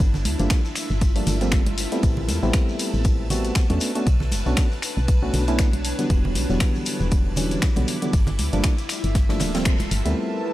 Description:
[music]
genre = deep house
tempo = 118 BPM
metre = 4/4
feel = swing 56% on 16ths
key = unclear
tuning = A4 = 440 Hz
[part]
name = woody FM bass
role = bass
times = 0.0-10.1 s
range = D1 to E2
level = -24 LUFS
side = equal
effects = sidechain pumping
[part]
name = electronic kick drum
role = drums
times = 0.0-9.8 s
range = none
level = -20 LUFS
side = equal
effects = overdrive
[part]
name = jazz brush drum kit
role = drums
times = 0.0-10.2 s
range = ride cymbal, snare drum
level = -39 LUFS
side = right 3 dB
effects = high-pass filter on cymbals, high-pass filter on snare, high-pass filter on room
[part]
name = punchy analog drum machine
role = drums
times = 0.0-10.1 s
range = finger snaps, hi-hat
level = -29 LUFS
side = left 1 dB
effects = overdrive
[part]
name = shekere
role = percussion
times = 0.0-10.1 s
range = none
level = -37 LUFS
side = left 4 dB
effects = none
[part]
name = granular cloud pad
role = texture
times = 0.0-10.5 s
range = D4 to D6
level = -32 LUFS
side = equal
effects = built-in reverb, sidechain pumping
[part]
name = congas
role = percussion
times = 0.1-9.9 s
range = none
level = -31 LUFS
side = right 2 dB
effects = none
[part]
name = percussive organ stab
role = stabs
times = 0.4-10.4 s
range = D3 to F#4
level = -26 LUFS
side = equal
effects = chorus, sidechain pumping, analog delay
[part]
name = warm analog pad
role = sustained chords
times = 10.3-10.5 s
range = E4 to A5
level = -28 LUFS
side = right 2 dB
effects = chorus, sidechain pumping
[sound]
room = small room reverb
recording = dry, gritty hardware recording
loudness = -19 LUFS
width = side -15 dB against mid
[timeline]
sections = 0.0-10.2 A section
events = band accent 9.7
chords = 0.0 Gm9; 2.0 Am9; 3.8 Bm9; 6.1 Em9; 8.1 Gm9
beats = | 0.00 0.51 1.01 1.52 | 2.03 2.54 3.05 3.56 | 4.07 4.58 5.08 5.59 | 6.10 6.61 7.12 7.62 | 8.13 8.64 9.15 9.66 | 10.17

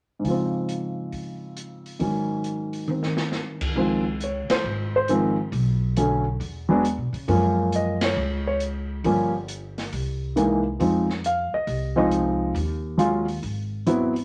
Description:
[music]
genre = jazz piano trio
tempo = 136 BPM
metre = 4/4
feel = swing 67% on 8ths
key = Db major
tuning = A4 = 440 Hz
[part]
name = warm concert grand piano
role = melody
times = 0.2-14.1 s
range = Ab2 to F5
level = -25 LUFS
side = equal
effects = none
[part]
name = open jazz drum kit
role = drums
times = 0.2-14.2 s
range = crash cymbal, hi-hat, kick drum, ride cymbal, snare drum, toms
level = -34 LUFS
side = equal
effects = none
[part]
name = upright bass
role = bass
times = 3.8-14.2 s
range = G1 to Db3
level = -30 LUFS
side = equal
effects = none
[sound]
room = moderate studio reverb, RT60 0.8 s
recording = none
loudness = -24 LUFS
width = mono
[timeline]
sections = 0.2-3.8 A section; 3.8-14.2 B section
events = drum fill 2.9-3.3; band accent 4.4, 7.9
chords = 0.2 Dbmaj7/Ab; 2.0 Ab7sus4; 3.8 Dbmaj7; 5.5 Cbm7; 6.4 E5; 7.3 Gbmaj9; 9.0 Gm7b5; 9.9 C7alt; 10.8 Fm7; 12.5 Ebm11; 13.4 Ab7alt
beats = | 0.25 0.69 1.13 1.57 | 2.01 2.45 2.89 3.33 | 3.77 4.21 4.64 5.08 | 5.52 5.96 6.40 6.84 | 7.28 7.72 8.16 8.60 | 9.04 9.48 9.92 10.36 | 10.79 11.23 11.67 12.11 | 12.55 12.99 13.43 13.86

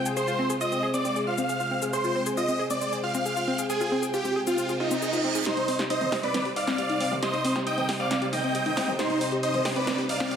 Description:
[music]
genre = uplifting trance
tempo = 136 BPM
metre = 4/4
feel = straight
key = C minor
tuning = A4 = 443 Hz
[part]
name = big supersaw lead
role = melody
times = 0.0-10.4 s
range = Eb4 to G5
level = -27 LUFS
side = right 1 dB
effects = phaser, tape echo
[part]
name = bright studio string section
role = sustained chords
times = 0.0-10.4 s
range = C3 to G5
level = -33 LUFS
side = left 1 dB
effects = vintage 12-bit sampler grit
[part]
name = analog pluck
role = arpeggios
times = 0.1-10.4 s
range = C4 to Ab4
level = -30 LUFS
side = left 1 dB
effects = chorus, dub echo
[part]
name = punchy analog drum machine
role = drums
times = 0.1-10.4 s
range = hi-hat, shaker, snare drum, toms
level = -33 LUFS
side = left 1 dB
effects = overdrive, high-pass filter on perc, high-pass filter on snare, high-pass filter on hats, high-pass filter on toms, high-pass filter on room
[part]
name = reverse cymbal and riser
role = sound effects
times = 4.7-10.4 s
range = none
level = -37 LUFS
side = right 4 dB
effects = none
[sound]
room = wet digital room reverb, RT60 1.2 s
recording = none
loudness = -24 LUFS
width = side -8 dB against mid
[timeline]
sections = 0.0-5.5 A section; 5.5-10.4 B section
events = reverse cymbal 4.7-5.5; build-up 5.5-10.4; drum fill 5.5-10.4; filter sweep on synth pluck 5.5-10.4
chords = 0.0 Fm; 5.5 Cm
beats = | 0.17 0.61 1.05 1.49 | 1.93 2.37 2.81 3.26 | 3.70 4.14 4.58 5.02 | 5.46 5.90 6.34 6.79 | 7.23 7.67 8.11 8.55 | 8.99 9.43 9.87 10.31

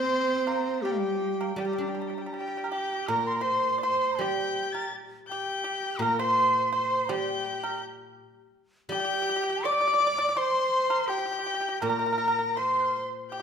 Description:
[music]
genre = chinese traditional, Chinese chamber ensemble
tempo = 82 BPM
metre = 4/4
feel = rubato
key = G yu mode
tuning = A4 = 437 Hz
[part]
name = mellow large dizi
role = melody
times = 0.0-13.4 s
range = G4 to D6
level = -28 LUFS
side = left 2 dB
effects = none
[part]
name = clear erhu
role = second line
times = 0.0-13.4 s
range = F5 to A6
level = -34 LUFS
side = left 5 dB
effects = none
[part]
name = pipa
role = second line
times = 0.0-13.4 s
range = G3 to D5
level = -34 LUFS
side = right 5 dB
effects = none
[part]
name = rich cello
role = second line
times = 0.0-13.4 s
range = G3 to D5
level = -32 LUFS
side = right 4 dB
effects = none
[part]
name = guzheng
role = accompaniment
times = 0.0-13.4 s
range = Bb2 to D4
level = -36 LUFS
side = left 1 dB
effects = none
[sound]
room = moderate recital hall reverb, RT60 1.4 s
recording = minimal, uncompressed stereo recording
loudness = -25 LUFS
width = side -7 dB against mid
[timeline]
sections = 0.0-3.1 A section; 3.1-13.4 B section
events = none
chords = none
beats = | 0.11 0.84 1.58 2.34 | 3.10 3.84 4.57 5.30 | 6.02 6.74 7.46 8.19 | 8.91 9.64 10.36 11.09 | 11.83 12.57 13.31

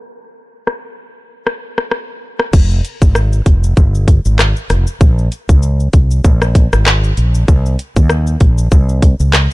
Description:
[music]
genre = dancehall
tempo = 97 BPM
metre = 4/4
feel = swing 56% on 16ths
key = F minor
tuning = A4 = 439 Hz
[part]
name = island pop drum kit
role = drums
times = 0.7-9.5 s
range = crash cymbal, handclaps, hi-hat, kick drum, rim click, shaker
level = -12 LUFS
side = equal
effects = vintage 12-bit sampler grit
[part]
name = fretless electric bass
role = bass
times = 2.5-9.5 s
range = F1 to Eb2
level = -12 LUFS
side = equal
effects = none
[sound]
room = little or no reverb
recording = dark, warm production, low-pass filter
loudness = -10 LUFS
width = side -20 dB against mid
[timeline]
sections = 0.0-2.5 A section; 2.5-9.5 B section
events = filter sweep 0.0-2.5; break 0.1-2.5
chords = none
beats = | 0.06 0.68 1.29 1.91 | 2.53 3.15 3.77 4.39 | 5.01 5.62 6.24 6.86 | 7.48 8.10 8.72 9.34

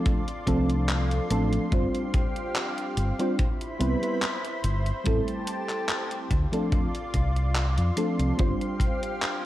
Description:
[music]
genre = vaporwave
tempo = 72 BPM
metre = 4/4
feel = swing 54% on 16ths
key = D dorian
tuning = A4 = 441 Hz
[part]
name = mellow FM electric piano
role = accompaniment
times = 0.0-9.5 s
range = F3 to C5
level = -28 LUFS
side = equal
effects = ensemble chorus, cassette tape, tape echo
[part]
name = lush unison pad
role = sustained chords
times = 0.0-9.5 s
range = E4 to C6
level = -34 LUFS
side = left 1 dB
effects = chorus
[part]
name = detuned 8-bit digital drum machine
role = drums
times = 0.1-9.4 s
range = handclaps, hi-hat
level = -33 LUFS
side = equal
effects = small room ambience, gated reverb
[part]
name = kick drum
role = drums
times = 0.1-9.0 s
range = none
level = -26 LUFS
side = equal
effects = small room ambience
[part]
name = fingered electric bass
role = bass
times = 0.5-8.5 s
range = G1 to F2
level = -26 LUFS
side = equal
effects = none
[sound]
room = light reverb, small room ambience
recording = cassette tape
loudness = -24 LUFS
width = side -14 dB against mid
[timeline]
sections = 0.0-9.5 A section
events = none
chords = 0.0 Dm7; 1.7 G7sus4; 3.4 Cmaj7; 5.1 Am7; 6.3 Dm7; 8.4 G7sus4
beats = 0.06 0.89 | 1.72 2.56 3.39 4.22 | 5.05 5.89 6.72 7.55 | 8.39 9.22

